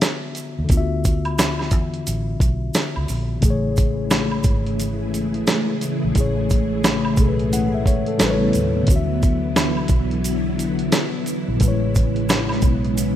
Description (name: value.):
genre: lo-fi hip hop.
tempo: 88 BPM.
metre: 4/4.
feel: swing 63% on 16ths.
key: A major.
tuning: A4 = 440 Hz.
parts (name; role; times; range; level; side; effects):
mellow tine electric piano; accompaniment; 0.0-13.2 s; A2 to F#5; -24 LUFS; left 3 dB; cassette tape, low-pass filter.
dusty soul sampler-style drum kit; drums; 0.0-13.2 s; hi-hat, kick drum, snare drum; -20 LUFS; right 1 dB; vintage 12-bit sampler grit.
maracas and woodblock; percussion; 0.0-13.2 s; none; -30 LUFS; right 2 dB; none.
vintage muted fingered electric bass; bass; 0.6-13.2 s; G#1 to E2; -25 LUFS; right 1 dB; none.
string machine, cellos; sustained chords; 3.4-13.2 s; C#3 to G#4; -23 LUFS; equal; ensemble chorus, low-pass filter.
room: light reverb.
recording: rough home demo mix.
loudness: -17 LUFS.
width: side -11 dB against mid.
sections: 0.0-13.2 A section.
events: none.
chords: 0.0 D69; 3.4 Amaj7; 8.2 A9; 8.9 D69; 11.6 Amaj9.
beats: 0.02 | 0.70 1.38 2.06 2.74 | 3.43 4.11 4.79 5.47 | 6.15 6.83 7.52 8.20 | 8.88 9.56 10.24 10.93 | 11.61 12.29 12.97.